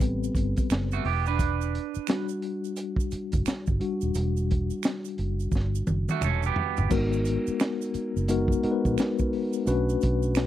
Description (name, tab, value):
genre	R&B, neo-soul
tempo	87 BPM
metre	4/4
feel	swing 63% on 16ths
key	unclear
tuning	A4 = 441 Hz
part	mellow tine electric piano	accompaniment	0.0-10.5 s	G3 to B4	-28 LUFS	left 3 dB	medium stereo tremolo
part	vintage muted fingered electric bass	bass	0.0-10.5 s	D#1 to B1	-28 LUFS	right 1 dB	none
part	crunchy breakbeat drum kit	drums	0.0-10.5 s	crash cymbal, hi-hat, kick drum, snare drum, toms	-28 LUFS	right 1 dB	none
part	tube shaker and finger snaps	percussion	0.0-10.5 s	none	-41 LUFS	right 25 dB	none
part	electric guitar through a small old amp	second line	0.9-6.9 s	A3 to B4	-29 LUFS	right 17 dB	spring reverb
room	little or no reverb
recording	dry, close 1970s-style studio recording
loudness	-24 LUFS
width	side -12 dB against mid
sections	0.0-6.9 A section; 6.9-10.5 B section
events	tine electric piano solo 0.0-6.9; drum fill 5.5-6.9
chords	0.0 Am9; 1.0 Em9; 6.9 G#m9; 9.7 Bm9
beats	0.01 0.70 | 1.39 2.08 2.77 3.46 | 4.15 4.84 5.53 6.22 | 6.91 7.60 8.29 8.98 | 9.67 10.36